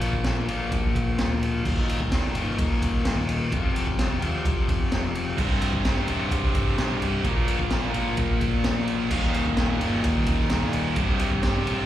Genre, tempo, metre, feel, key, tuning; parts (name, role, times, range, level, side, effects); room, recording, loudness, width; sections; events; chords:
hard rock; 129 BPM; 4/4; straight; A4 = 440 Hz
cranked stack guitar; riff; 0.0-11.9 s; C2 to Bb3; -27 LUFS; left 5 dB; overdrive
fingered electric bass; bass; 0.0-11.9 s; C1 to F2; -30 LUFS; right 1 dB
raw garage drum kit; drums; 0.0-11.8 s; crash cymbal, kick drum, ride cymbal, snare drum; -25 LUFS; equal
tight distorted guitar; riff; 5.4-11.9 s; C2 to Bb3; -29 LUFS; right 11 dB; distortion, slapback echo
light reverb; live gig heard through the venue's PA, club reverb; -22 LUFS; side -12 dB against mid
0.0-11.9 A section
0.0 Bb; 1.7 Eb5; 3.5 F5; 5.4 C5; 7.2 Bb5; 9.1 Eb5; 11.0 C5